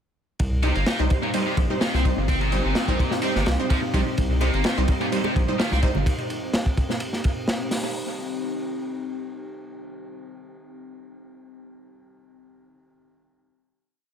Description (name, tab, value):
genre	breakbeat, breaks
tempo	127 BPM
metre	4/4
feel	swing 53% on 16ths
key	C minor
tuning	A4 = 437 Hz
part	deep dark ambient pad	sustained chords	1.0-7.9 s	C4 to G4	-32 LUFS	left 1 dB	chorus, built-in reverb, sidechain pumping
part	saturated sub bass	bass	0.4-6.0 s	G1 to C2	-24 LUFS	equal	none
part	crunchy breakbeat drum kit	drums	0.4-7.9 s	hi-hat, kick drum, ride cymbal, snare drum	-25 LUFS	equal	analog delay
part	high-gain distorted guitar	riff	0.6-5.8 s	Bb2 to C4	-29 LUFS	equal	distortion, overdrive, analog delay
part	orchestra-hit-like synth stab	stabs	0.6-5.9 s	G3 to C5	-28 LUFS	right 1 dB	built-in reverb, analog delay
part	bongos and congas	percussion	4.4-6.0 s	none	-34 LUFS	right 3 dB	none
room	light reverb, small room ambience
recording	echo-heavy mix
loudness	-21 LUFS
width	side -8 dB against mid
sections	0.4-8.0 drop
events	drop 0.4-8.0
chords	0.4 Cm